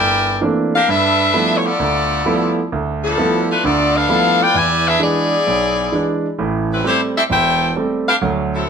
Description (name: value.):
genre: jazz.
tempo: 131 BPM.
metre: 4/4.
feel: swing 68% on 8ths.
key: G mixolydian.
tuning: A4 = 440 Hz.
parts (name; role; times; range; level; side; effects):
edgy saxophone section; melody; 0.0-8.7 s; F3 to G#5; -15 LUFS; left 2 dB; none.
clear concert grand piano; accompaniment; 0.0-8.6 s; E1 to E4; -18 LUFS; right 3 dB; none.
room: moderate large studio reverb, RT60 0.9 s.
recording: none.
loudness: -14 LUFS.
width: side -6 dB against mid.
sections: 0.0-8.7 A section.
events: none.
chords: 0.0 C13; 0.9 G13; 4.5 E7; 6.4 Am7.